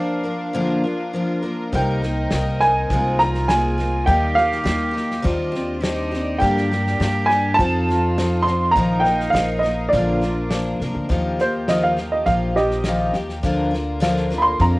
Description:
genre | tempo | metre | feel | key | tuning
acoustic folk duo or small band | 102 BPM | 4/4 | straight | Eb major | A4 = 440 Hz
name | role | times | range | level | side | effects
warm upright piano | melody | 0.0-14.8 s | G4 to C6 | -20 LUFS | right 1 dB | none
rich cello | second line | 0.0-11.1 s | D4 to G4 | -27 LUFS | right 1 dB | cassette tape
picked twelve-string acoustic guitar | accompaniment | 0.0-14.8 s | G2 to Bb4 | -24 LUFS | left 2 dB | cassette tape
warm studio string section | sustained chords | 0.0-14.8 s | D3 to Ab5 | -32 LUFS | left 1 dB | cassette tape
upright bass | bass | 1.7-14.8 s | Bb1 to G2 | -24 LUFS | equal | none
loose indie drum kit | drums | 1.7-14.7 s | kick drum, snare drum | -27 LUFS | equal | cassette tape
room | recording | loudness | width
moderate booth ambience, RT60 0.2 s | home recording on cassette | -17 LUFS | side -21 dB against mid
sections
0.0-11.1 A section; 11.1-14.8 B section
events
upright piano solo 11.1-14.8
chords
0.0 Bb; 1.7 Cm7; 2.9 Abadd9/C; 4.1 Eb; 5.2 Cmadd9/Eb; 6.4 Gm; 7.6 F7; 8.8 Bbsus4; 9.9 Bb; 11.1 Ebadd9; 13.4 Bb/D

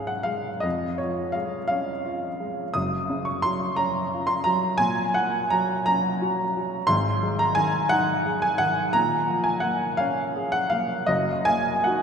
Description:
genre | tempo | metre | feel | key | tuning
classical, romantic nocturne for solo piano | 50-60 BPM (dotted quarters) | 12/8 | rubato | Db major | A4 = 440 Hz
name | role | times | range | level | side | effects
dark baby grand piano | solo | 0.0-12.0 s | Gb1 to Eb6 | -22 LUFS | equal | none
room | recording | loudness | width
wet cathedral reverb, RT60 4.8 s | minimal, uncompressed stereo recording | -22 LUFS | side -6 dB against mid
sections
0.0-12.0 A section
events
none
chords
0.0 Db5; 0.6 Db/F; 2.8 Gb5; 4.8 Gb/Bb; 6.9 Ab5; 9.0 Bbm7; 11.1 Ebm/Gb

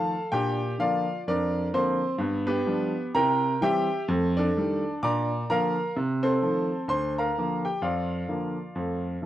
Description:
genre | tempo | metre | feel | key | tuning
jazz, stride piano | 128 BPM | 4/4 | swing 59% on 8ths | Bb major | A4 = 443 Hz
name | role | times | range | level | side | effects
clear baby grand piano | solo | 0.0-9.3 s | D2 to D6 | -24 LUFS | equal | none
room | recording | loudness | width
moderate club reverb, RT60 0.9 s | dark, warm production | -24 LUFS | side -13 dB against mid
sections
0.0-9.3 A section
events
none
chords
0.3 Bb; 2.2 G7; 3.1 C7; 4.1 F13; 5.0 Bb; 6.0 F7/C; 6.9 Bb/D; 7.8 Bb/F

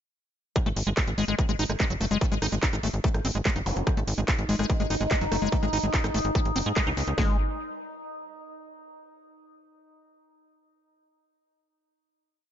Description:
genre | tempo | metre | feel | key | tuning
psychedelic trance | 145 BPM | 4/4 | straight | unclear | A4 = 440 Hz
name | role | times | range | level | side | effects
liquid acid bass | riff | 0.6-7.4 s | F#3 to D#4 | -30 LUFS | moving between left 4 dB and right 3 dB | chorus, auto-pan, sidechain pumping, ping-pong delay
techno drum kit | drums | 0.6-7.3 s | kick drum, snare drum | -26 LUFS | equal | distortion
techno drum kit | drums | 0.6-7.2 s | handclaps, hi-hat, rim click | -33 LUFS | equal | none
tight sequencer bass | bass | 0.7-7.4 s | F#1 to G#2 | -29 LUFS | equal | none
zap | sound effects | 3.7-3.8 s | none | -37 LUFS | right 1 dB | none
overtone-sweeping drone | sustained chords | 4.2-7.2 s | D#4 | -33 LUFS | equal | chorus, built-in reverb, sidechain pumping
room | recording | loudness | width
little or no reverb | nothing above 7.5 kHz | -24 LUFS | side -10 dB against mid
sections
0.6-7.2 drop; 7.2-8.8 final chord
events
drop 0.6-7.2; band accent 6.8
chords
0.6 G#5; 7.2 N.C.

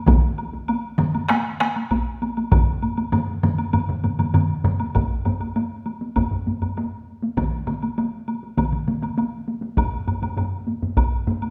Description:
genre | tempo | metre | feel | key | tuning
japanese traditional, taiko drum ensemble | 99 BPM | 4/4 | straight | none | none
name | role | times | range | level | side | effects
taiko ensemble | percussion | 0.1-11.5 s | none | -28 LUFS | equal | none
taiko ensemble | percussion | 0.1-11.4 s | none | -27 LUFS | equal | none
taiko ensemble | percussion | 0.1-9.2 s | none | -28 LUFS | equal | none
taiko ensemble | percussion | 0.1-11.1 s | none | -24 LUFS | equal | none
woodblock | percussion | 0.1-11.5 s | none | -34 LUFS | equal | none
room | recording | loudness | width
wet recital hall reverb, RT60 1.3 s | none | -23 LUFS | mono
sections
0.0-5.0 A section; 5.0-11.5 B section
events
none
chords
none

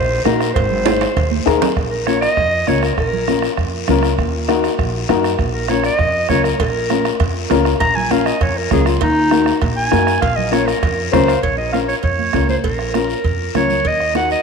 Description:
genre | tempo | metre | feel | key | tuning
latin, cumbia | 199 BPM | 4/4 | straight | Bb minor | A4 = 440 Hz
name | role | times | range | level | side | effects
warm clarinet | melody | 0.0-14.4 s | Eb4 to Bb5 | -19 LUFS | right 1 dB | tape echo
upright bass | bass | 0.0-14.3 s | Ab1 to Gb2 | -22 LUFS | equal | none
dark upright piano | accompaniment | 0.3-14.4 s | Db4 to F5 | -19 LUFS | left 9 dB | none
bombo | percussion | 0.3-14.3 s | none | -23 LUFS | right 5 dB | none
congas | percussion | 0.3-14.3 s | none | -25 LUFS | right 12 dB | none
guiro | percussion | 0.3-14.4 s | none | -31 LUFS | left 12 dB | none
cowbell and timbales | percussion | 0.6-1.7, 6.6-14.0 s | none | -26 LUFS | right 10 dB | none
room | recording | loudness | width
wet echo chamber reverb, RT60 2.6 s | 1960s-style stereo with parts hard left and right | -14 LUFS | side -5 dB against mid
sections
0.0-1.8 A section; 1.8-11.4 B section; 11.4-14.4 C section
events
drum fill 0.9-1.8; clarinet solo 1.8-11.4; upright piano fill 11.0-11.4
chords
0.0 Ebm; 0.6 Ab; 1.8 Bbm; 4.2 Ebm; 5.4 Bbm; 9.0 Ebm; 10.2 Bbm; 13.9 Ebm

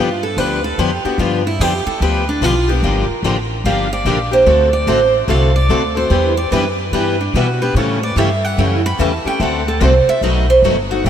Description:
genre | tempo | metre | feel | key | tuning
acoustic string swing (jazz manouche) | 146 BPM | 4/4 | swing 64% on 8ths | unclear | A4 = 440 Hz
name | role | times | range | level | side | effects
picked steel-string acoustic guitar | melody | 0.0-11.1 s | D4 to B5 | -17 LUFS | right 3 dB | diffuse ambient delay
picked steel-string acoustic guitar | accompaniment | 0.0-11.1 s | B2 to A4 | -19 LUFS | left 6 dB | none
upright bass | bass | 0.0-11.1 s | G1 to B2 | -18 LUFS | equal | none
picked steel-string acoustic guitar | accompaniment | 2.8-11.1 s | B2 to B4 | -24 LUFS | right 7 dB | ensemble chorus
room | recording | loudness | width
moderate lush hall reverb, RT60 2.8 s | dreamy mix soaked in reverb | -13 LUFS | side -9 dB against mid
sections
0.0-11.1 A section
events
steel-string acoustic guitar solo 0.0-11.1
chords
0.0 G7; 2.8 Gm7; 4.5 D7; 6.1 Em7; 7.8 A7; 9.4 D7; 10.2 B7

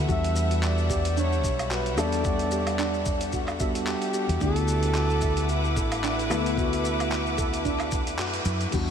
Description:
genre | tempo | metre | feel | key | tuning
sunset chillout | 111 BPM | 4/4 | swing 56% on 16ths | unclear | A4 = 437 Hz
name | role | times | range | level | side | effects
dark baby grand piano | accompaniment | 0.0-8.9 s | G3 to F#5 | -31 LUFS | moving between left 6 dB and right 3 dB | auto-pan, diffuse ambient delay
bright studio string section | sustained chords | 0.0-8.9 s | G3 to D6 | -33 LUFS | left 2 dB | none
steel pan | arpeggios | 0.0-8.7 s | D4 to E5 | -34 LUFS | right 4 dB | vintage 12-bit sampler grit, diffuse ambient delay
fingered electric bass | bass | 0.0-8.9 s | A1 to F#2 | -28 LUFS | equal | none
trumpet with bucket mute | melody | 0.1-8.9 s | E4 to E5 | -31 LUFS | right 1 dB | tape echo
dusty soul sampler-style drum kit | drums | 0.1-8.9 s | crash cymbal, handclaps, hi-hat, shaker, woodblock | -34 LUFS | equal | none
electronic kick drum | drums | 0.1-8.9 s | none | -30 LUFS | equal | none
room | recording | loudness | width
moderate huge ambient reverb, RT60 8.7 s | dreamy mix soaked in reverb | -23 LUFS | side -8 dB against mid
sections
0.0-8.7 A section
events
band accent 8.2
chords
0.1 Em9; 4.4 D69

